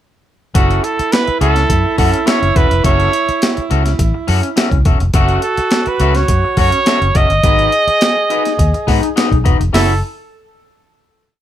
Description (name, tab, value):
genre	funk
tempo	104 BPM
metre	4/4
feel	straight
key	F# dorian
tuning	A4 = 440 Hz
part	clear trumpet	melody	0.5-10.0 s	F#4 to D#5	-16 LUFS	right 2 dB	plate reverb
part	electric guitar at the edge of break-up	accompaniment	0.5-9.9 s	C#4 to F#5	-20 LUFS	left 6 dB	none
part	warm baritone saxophone	second line	0.6-9.9 s	E4 to G#4	-22 LUFS	right 6 dB	none
part	vintage muted fingered electric bass	bass	0.6-10.0 s	E1 to G#2	-15 LUFS	equal	none
part	breakbeat sampler-style drum kit	drums	0.6-9.9 s	hi-hat, kick drum, snare drum	-16 LUFS	equal	none
room	light reverb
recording	none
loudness	-11 LUFS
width	side -11 dB against mid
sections	0.6-9.7 A section; 9.7-11.4 final chord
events	none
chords	0.6 F#m7; 7.4 G#m7; 9.7 F#m7